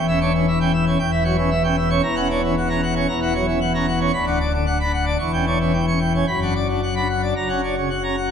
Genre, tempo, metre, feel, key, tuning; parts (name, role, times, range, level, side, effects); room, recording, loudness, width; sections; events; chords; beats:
classical, organ toccata; 114 BPM; 4/4; straight; B minor; A4 = 440 Hz
pipe organ, plenum; solo; 0.0-8.3 s; D1 to C#6; -18 LUFS; left 1 dB
wet scoring stage reverb, RT60 1.7 s; -18 LUFS; side -7 dB against mid
0.0-8.3 A section
0.0 C#dim/E; 2.0 F#7/E; 4.1 Bm/D; 5.2 C#dim/E; 6.3 Bm/F#; 7.4 F#
0.46 0.98 1.51 | 2.04 2.56 3.08 3.60 | 4.13 4.66 5.19 5.73 | 6.27 6.81 7.36 7.90